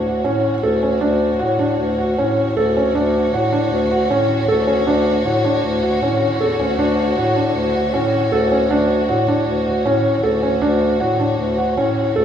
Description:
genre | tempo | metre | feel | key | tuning
contemporary instrumental, chamber music in an uneven meter | 156 BPM | 5/4 | straight | D major | A4 = 440 Hz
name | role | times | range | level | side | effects
rich chamber string section | sustained chords | 0.0-12.2 s | D3 to C#5 | -24 LUFS | left 3 dB | none
mellow bass clarinet | bass | 0.0-12.2 s | D2 to A2 | -18 LUFS | equal | none
felt-muted upright piano | arpeggios | 0.1-12.2 s | C#4 to A4 | -19 LUFS | right 1 dB | none
room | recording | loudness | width
wet recital hall reverb, RT60 1.7 s | heard from further back in the room | -15 LUFS | side -9 dB against mid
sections
0.0-12.2 A section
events
none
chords
0.0 Dmaj7

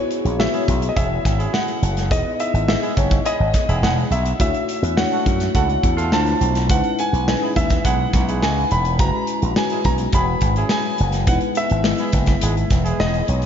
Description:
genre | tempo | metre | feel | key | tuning
polished 1980s jazz-funk pop | 105 BPM | 4/4 | straight | unclear | A4 = 443 Hz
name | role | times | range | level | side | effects
warm grand piano | melody | 0.0-13.5 s | C#5 to B5 | -23 LUFS | right 1 dB | ping-pong delay
tine electric piano | accompaniment | 0.0-13.5 s | G#3 to D#5 | -25 LUFS | left 3 dB | analog chorus
modern studio drum kit | drums | 0.1-13.5 s | hi-hat, kick drum, snare drum | -22 LUFS | equal | none
slap bass with an envelope filter | bass | 0.2-13.5 s | E1 to F#2 | -21 LUFS | equal | none
mellow horn section | second line | 0.5-13.3 s | G#3 to A4 | -31 LUFS | right 4 dB | none
room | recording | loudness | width
moderate lush hall reverb, RT60 2.9 s | dreamy mix soaked in reverb, nothing above 7.5 kHz | -16 LUFS | side -8 dB against mid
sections
0.0-13.5 A section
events
none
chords
0.0 F#9sus4; 2.1 Emaj7; 4.4 Dmaj9; 6.1 Dm9; 6.7 C#m9; 9.0 F#9sus4; 11.3 Emaj7

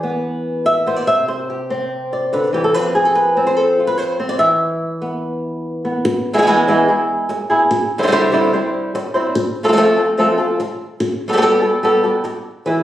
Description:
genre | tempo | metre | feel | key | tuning
flamenco | 145 BPM | 4/4 | straight | unclear | A4 = 438 Hz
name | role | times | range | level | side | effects
flamenco guitar | solo | 0.0-12.8 s | C3 to E5 | -14 LUFS | equal | none
room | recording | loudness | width
moderate studio reverb, RT60 0.7 s | recorded on a phone in the room, studio reverb, compression | -14 LUFS | side -13 dB against mid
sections
0.0-6.1 A section; 6.1-12.7 B section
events
none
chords
0.0 E; 1.1 Cadd9; 2.7 F5; 4.4 E5; 6.1 E; 7.7 Cadd9; 9.4 F; 11.0 Gadd9

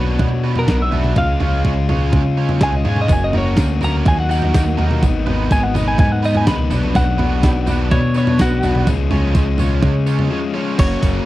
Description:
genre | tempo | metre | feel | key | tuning
indie rock | 125 BPM | 4/4 | straight | unclear | A4 = 440 Hz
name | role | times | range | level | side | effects
twelve-string electric guitar | melody | 0.0-11.3 s | F#4 to B5 | -22 LUFS | equal | slapback echo
high-gain distorted guitar | riff | 0.0-11.3 s | F#2 to C#5 | -26 LUFS | right 8 dB | distortion, analog chorus, slapback echo
overdriven electric guitar | riff | 0.0-11.3 s | D#3 to F#4 | -22 LUFS | left 6 dB | none
picked electric bass | bass | 0.0-11.2 s | F#1 to C#3 | -18 LUFS | equal | none
crisp 8-bit digital drum machine | drums | 0.2-11.1 s | crash cymbal, hi-hat, kick drum, snare drum, toms | -18 LUFS | right 1 dB | none
tambourine | percussion | 3.1-11.1 s | none | -40 LUFS | left 12 dB | none
room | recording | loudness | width
little or no reverb | dry, close 1970s-style studio recording | -14 LUFS | side -16 dB against mid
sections
0.0-10.8 A section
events
clean electric guitar solo 0.0-10.8; break 10.3-10.8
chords
0.0 Bm; 1.2 C#; 3.1 F#; 4.1 D#m; 5.0 G#m; 6.7 Bm; 8.9 C#

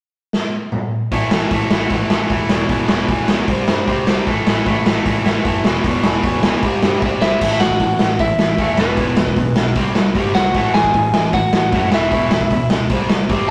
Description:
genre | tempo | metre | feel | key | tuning
punk rock | 153 BPM | 4/4 | straight | unclear | A4 = 440 Hz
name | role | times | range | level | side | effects
raw garage drum kit | drums | 0.3-13.4 s | crash cymbal, hi-hat, kick drum, snare drum, toms | -20 LUFS | equal | none
overdriven electric guitar | riff | 1.1-13.5 s | E2 to C4 | -21 LUFS | equal | none
picked electric bass | bass | 1.1-13.5 s | E1 to G2 | -28 LUFS | equal | none
lightly driven lead guitar | melody | 7.2-12.7 s | B3 to G#5 | -20 LUFS | equal | none
room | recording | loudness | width
moderate studio ambience, RT60 0.5 s | rough rehearsal-room recording, tube saturation | -17 LUFS | mono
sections
0.0-1.1 A section; 1.1-7.4 B section; 7.4-13.5 C section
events
drum fill 0.3-1.1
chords
0.0 N.C.; 1.1 A5; 2.5 E5; 3.5 C5; 4.3 A5; 5.6 E5; 6.6 C; 7.4 A5; 8.8 E5; 9.8 C5; 10.6 A5; 11.9 E5; 12.9 C5

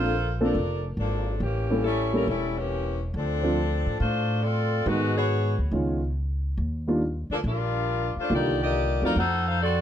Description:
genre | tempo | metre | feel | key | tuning
jazz, big band swing | 139 BPM | 4/4 | swing 67% on 8ths | unclear | A4 = 440 Hz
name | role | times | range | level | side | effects
warm saxophone section | melody | 0.0-9.8 s | E3 to Gb5 | -27 LUFS | left 2 dB | plate reverb
warm concert grand piano | accompaniment | 0.0-9.2 s | D3 to Bb4 | -26 LUFS | right 1 dB | none
upright bass | bass | 0.0-9.8 s | E1 to A2 | -27 LUFS | equal | none
room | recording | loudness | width
light reverb | close, detailed microphones | -23 LUFS | side -10 dB against mid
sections
0.0-9.8 A section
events
none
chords
0.0 Bbmaj7; 1.4 A7b9; 3.1 Dm7; 4.9 Abm7; 5.7 Db9; 6.6 Ebmaj9; 8.3 Cm11; 9.2 F7b9

